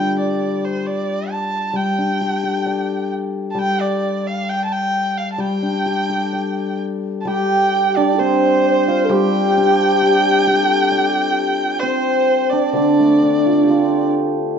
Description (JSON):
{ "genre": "chinese traditional, Chinese chamber ensemble", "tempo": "66 BPM", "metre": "2/4", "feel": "rubato", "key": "G shang mode", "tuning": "A4 = 440 Hz", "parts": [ { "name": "rich erhu", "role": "melody", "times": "0.0-14.1 s", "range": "C5 to A5", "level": "-20 LUFS", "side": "right 2 dB", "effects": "none" }, { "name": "hammered dulcimer", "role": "accompaniment", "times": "0.0-14.6 s", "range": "D3 to D5", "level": "-21 LUFS", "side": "left 4 dB", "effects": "none" }, { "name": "breathy mellow low xiao", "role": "second line", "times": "7.3-14.6 s", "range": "D4 to C5", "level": "-20 LUFS", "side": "left 6 dB", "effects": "none" }, { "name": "hammered dulcimer", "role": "second line", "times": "7.3-14.6 s", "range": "C4 to G4", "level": "-18 LUFS", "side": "right 8 dB", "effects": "none" } ], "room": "wet recital hall reverb, RT60 1.7 s", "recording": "dark, warm production, nothing above 7.5 kHz", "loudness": "-15 LUFS", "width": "side -7 dB against mid", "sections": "0.0-7.3 A section; 7.3-14.6 B section", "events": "none", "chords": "none" }